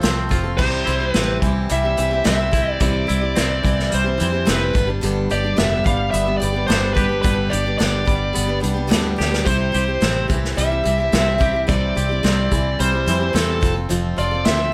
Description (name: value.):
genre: folk rock and heartland rock.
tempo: 108 BPM.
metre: 4/4.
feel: straight.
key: unclear.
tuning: A4 = 441 Hz.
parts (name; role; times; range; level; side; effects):
picked steel-string acoustic guitar; accompaniment; 0.0-14.7 s; G2 to A4; -27 LUFS; equal; none.
twangy electric guitar; riff; 0.0-14.7 s; F2 to G4; -29 LUFS; equal; phaser.
fingered electric bass; bass; 0.0-14.7 s; F1 to F2; -25 LUFS; equal; none.
unplugged drum kit; drums; 0.0-14.6 s; crash cymbal, hi-hat, kick drum, snare drum; -24 LUFS; equal; none.
bluesy overdriven lead guitar; melody; 0.6-14.7 s; A4 to F5; -24 LUFS; equal; distortion.
room: light reverb, small room ambience.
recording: none.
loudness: -19 LUFS.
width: mono.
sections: 0.6-14.7 A section.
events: drum fill 9.2.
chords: 0.0 F; 0.6 C; 4.7 G; 9.5 C; 13.6 F.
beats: 0.03 | 0.59 1.14 1.70 2.25 | 2.81 3.36 3.92 4.47 | 5.02 5.58 6.13 6.69 | 7.25 7.80 8.36 8.91 | 9.46 10.02 10.58 11.13 | 11.69 12.24 12.80 13.35 | 13.91 14.46.